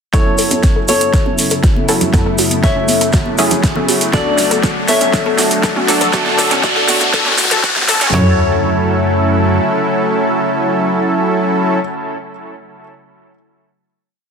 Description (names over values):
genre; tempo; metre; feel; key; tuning
progressive house; 120 BPM; 4/4; straight; F# minor; A4 = 440 Hz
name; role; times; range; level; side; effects
dark baby grand piano; melody; 0.1-11.8 s; F#4 to E5; -21 LUFS; left 3 dB; sidechain pumping, digital delay
soft synth bell; second line; 0.1-11.8 s; C#5 to E5; -24 LUFS; left 2 dB; chorus, phaser, sidechain pumping, tape echo
evolving wavetable pad; sustained chords; 0.8-11.8 s; C#3 to F#4; -21 LUFS; left 2 dB; chorus, built-in reverb, sidechain pumping
analog pluck; arpeggios; 0.1-8.4 s; C#4 to A4; -21 LUFS; left 1 dB; chorus, sidechain pumping, tape echo
supersaw stab; stabs; 0.1-11.8 s; F#3 to A4; -17 LUFS; right 1 dB; sidechain pumping, low-pass filter, tape echo
plucky analog bass; bass; 0.1-9.6 s; D2 to F#2; -20 LUFS; equal; sidechain pumping
big-room dance drum kit; drums; 0.1-8.2 s; hi-hat, snare drum; -18 LUFS; right 1 dB; overdrive, high-pass filter on snare, studio reverb, sidechain pumping on hats, high-pass filter on hats
deep house drum kit; drums; 0.1-8.3 s; kick drum, snare drum, toms; -15 LUFS; equal; studio reverb
congas; percussion; 0.1-7.9 s; none; -26 LUFS; right 1 dB; sidechain pumping on perc
tube shaker; percussion; 0.1-8.1 s; none; -23 LUFS; right 3 dB; none
riser; sound effects; 2.6-8.1 s; none; -20 LUFS; left 1 dB; none
room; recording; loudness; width
moderate digital room reverb, RT60 1.1 s; dense, heavily limited modern master, high-pass filter; -11 LUFS; side -6 dB against mid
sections
0.1-8.1 build; 8.1-12.1 final chord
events
build-up 0.1-8.1; drum fill 0.1-8.1; filter sweep on synth arpeggio sound 0.1-8.1; filter sweep on supersaw synth 0.1-8.1; filter sweep 0.1-8.1; riser 2.6-8.1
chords
0.1 F#m7; 4.1 D; 8.1 F#m7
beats
| 0.14 0.64 1.14 1.64 | 2.14 2.64 3.14 3.64 | 4.14 4.64 5.14 5.64 | 6.14 6.64 7.14 7.64 | 8.14 8.64 9.14 9.64 | 10.14 10.64 11.14 11.64